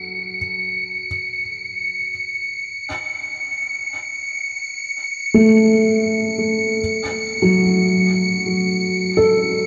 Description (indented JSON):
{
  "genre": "ambient",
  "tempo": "free time",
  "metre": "none",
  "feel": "none",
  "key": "unclear",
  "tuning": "A4 = 440 Hz",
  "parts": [
    { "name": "felt-muted upright piano", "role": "arpeggios", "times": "0.0-9.7 s", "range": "F#3 to A4", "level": "-18 LUFS", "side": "equal", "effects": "delay" },
    { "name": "wind-like tuned noise texture", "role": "texture", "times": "0.0-9.7 s", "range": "C#7", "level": "-24 LUFS", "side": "equal", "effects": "built-in reverb" }
  ],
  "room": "wet cathedral reverb, RT60 5.5 s",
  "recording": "none",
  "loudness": "-19 LUFS",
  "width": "mono",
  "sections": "0.0-9.7 A section",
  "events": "none",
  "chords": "0.0 F#5; 2.7 A; 6.8 F#m"
}